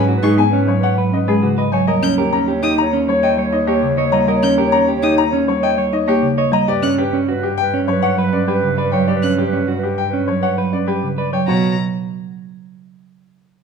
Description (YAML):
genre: classical, minimalist pattern music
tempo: 100 BPM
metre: 4/4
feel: straight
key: unclear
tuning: A4 = 440 Hz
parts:
  - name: bright baby grand piano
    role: melody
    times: 0.0-11.8 s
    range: G4 to A#5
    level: -21 LUFS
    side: left 11 dB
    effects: none
  - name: mellow clarinet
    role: second line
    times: 0.0-11.2 s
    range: B4 to C#5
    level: -22 LUFS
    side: equal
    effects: none
  - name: clean electric guitar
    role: arpeggios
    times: 0.0-11.8 s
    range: C#4 to D#5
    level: -20 LUFS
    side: right 4 dB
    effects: none
  - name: clear violin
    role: arpeggios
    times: 0.0-11.8 s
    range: A#5 to G6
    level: -26 LUFS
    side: left 4 dB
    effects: none
  - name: rich cello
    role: bass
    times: 0.0-11.8 s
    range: D#2 to B2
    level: -23 LUFS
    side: right 1 dB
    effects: none
  - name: folk marimba with medium mallets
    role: accompaniment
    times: 0.2-11.8 s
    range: C#3 to D#4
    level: -20 LUFS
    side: right 2 dB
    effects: none
room: moderate recital hall reverb, RT60 1.4 s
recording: minimal, uncompressed stereo recording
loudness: -14 LUFS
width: side -6 dB against mid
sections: 0.0-11.5 A section; 11.5-13.6 B section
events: none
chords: 0.0 G#m7; 1.9 D#7; 6.7 Gmaj7; 11.5 B5